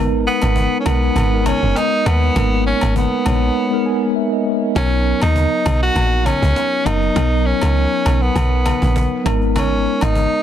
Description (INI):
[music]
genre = afrobeats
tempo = 100 BPM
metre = 4/4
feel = swing 55% on 16ths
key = B major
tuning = A4 = 441 Hz
[part]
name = mellow tine electric piano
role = accompaniment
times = 0.0-10.4 s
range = F#3 to G#5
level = -20 LUFS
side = left 1 dB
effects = medium stereo tremolo
[part]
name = deep log drum bass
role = bass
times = 0.0-10.3 s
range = F#1 to D#2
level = -17 LUFS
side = equal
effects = none
[part]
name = breathy tenor saxophone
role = melody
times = 0.3-10.4 s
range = B3 to F#4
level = -20 LUFS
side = equal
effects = tape echo
[part]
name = cajon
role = drums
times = 0.3-10.3 s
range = none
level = -27 LUFS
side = equal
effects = none
[part]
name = agogo bells and woodblock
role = percussion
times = 0.4-10.1 s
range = none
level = -29 LUFS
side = left 2 dB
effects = none
[sound]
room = light reverb, small room ambience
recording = dense, heavily limited modern master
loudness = -14 LUFS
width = side -10 dB against mid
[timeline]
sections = 0.0-4.8 A section; 4.8-10.4 B section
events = drums muted 3.6-4.8; tine electric piano fill 3.6-4.8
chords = 0.0 G#madd9; 4.8 Bmaj7; 9.3 G#madd9